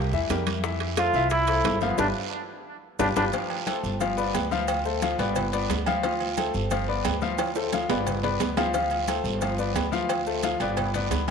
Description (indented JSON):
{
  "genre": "latin, salsa",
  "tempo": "178 BPM",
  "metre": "4/4",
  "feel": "straight",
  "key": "unclear",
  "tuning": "A4 = 440 Hz",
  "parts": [
    { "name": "clear grand piano", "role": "accompaniment", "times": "0.0-11.3 s", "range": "E3 to F5", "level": "-27 LUFS", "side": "left 5 dB", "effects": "none" },
    { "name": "upright bass", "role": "bass", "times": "0.0-11.3 s", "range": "G1 to F2", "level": "-30 LUFS", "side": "right 2 dB", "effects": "none" },
    { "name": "bongos and cowbell", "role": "percussion", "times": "0.1-11.3 s", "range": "none", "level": "-35 LUFS", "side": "left 8 dB", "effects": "none" },
    { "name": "congas", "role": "percussion", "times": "0.1-11.3 s", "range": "none", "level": "-37 LUFS", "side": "left 7 dB", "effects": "none" },
    { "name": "maracas", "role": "percussion", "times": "0.1-11.3 s", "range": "none", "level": "-45 LUFS", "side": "right 15 dB", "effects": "none" },
    { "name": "guiro", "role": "percussion", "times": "0.3-11.3 s", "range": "none", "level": "-39 LUFS", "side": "right 12 dB", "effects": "none" },
    { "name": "timbales and agogo bells", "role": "percussion", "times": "0.3-11.3 s", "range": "none", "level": "-32 LUFS", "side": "right 11 dB", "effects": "none" },
    { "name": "bright trombone", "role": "melody", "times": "1.0-3.2 s", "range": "B3 to F4", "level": "-27 LUFS", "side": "right 1 dB", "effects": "tape echo" }
  ],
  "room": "wet echo chamber reverb, RT60 2.0 s, small room ambience",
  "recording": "1960s-style stereo with parts hard left and right",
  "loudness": "-23 LUFS",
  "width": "side -6 dB against mid",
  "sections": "0.0-3.3 A section; 3.3-11.3 B section",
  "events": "drum fill 2.0-3.3, 7.4-8.7; band accent 2.0-3.3",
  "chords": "0.0 C7; 0.6 Fmaj9; 2.0 G7; 3.3 G9sus4; 4.0 G7; 4.7 Dm7; 5.4 G7; 6.0 Dm7; 6.7 G7; 7.4 Dm7; 8.1 G7; 8.7 Dm7; 9.4 G7; 10.1 Dm7; 10.8 G",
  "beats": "0.30 | 0.63 0.97 1.31 1.65 | 1.98 2.32 2.66 3.00 | 3.33 3.67 4.01 4.35 | 4.68 5.02 5.36 5.70 | 6.04 6.37 6.71 7.05 | 7.39 7.73 8.06 8.40 | 8.74 9.08 9.42 9.76 | 10.10 10.43 10.77 11.11"
}